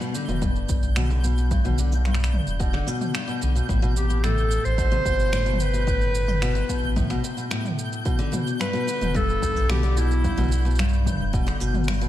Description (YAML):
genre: folktronica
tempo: 110 BPM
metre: 4/4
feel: straight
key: unclear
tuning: A4 = 438 Hz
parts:
  - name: picked steel-string acoustic guitar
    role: arpeggios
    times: 0.0-12.1 s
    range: G2 to D3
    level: -27 LUFS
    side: left 2 dB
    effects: low-pass filter, ping-pong delay
  - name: organic electronic drum kit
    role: drums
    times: 0.0-12.1 s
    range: finger snaps, shaker, toms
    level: -31 LUFS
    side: right 1 dB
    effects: overdrive
  - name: twinkling granular texture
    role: texture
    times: 0.0-12.1 s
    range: G6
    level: -36 LUFS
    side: right 1 dB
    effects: built-in reverb, wide subtle chorus
  - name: warm sub bass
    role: bass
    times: 0.3-12.1 s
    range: E1 to B1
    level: -23 LUFS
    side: equal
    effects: none
  - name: electronic kick drum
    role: drums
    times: 0.4-11.4 s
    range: none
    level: -26 LUFS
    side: equal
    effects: overdrive
  - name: bright clarinet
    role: melody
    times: 4.0-10.8 s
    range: E4 to C5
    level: -27 LUFS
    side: equal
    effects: vintage 12-bit sampler grit, ping-pong delay
room: moderate plate reverb, RT60 1.6 s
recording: dreamy mix soaked in reverb, lossy compression artefacts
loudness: -21 LUFS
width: side -13 dB against mid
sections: 0.0-12.1 A section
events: none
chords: 0.0 Em7; 3.7 Amadd9; 8.1 Em7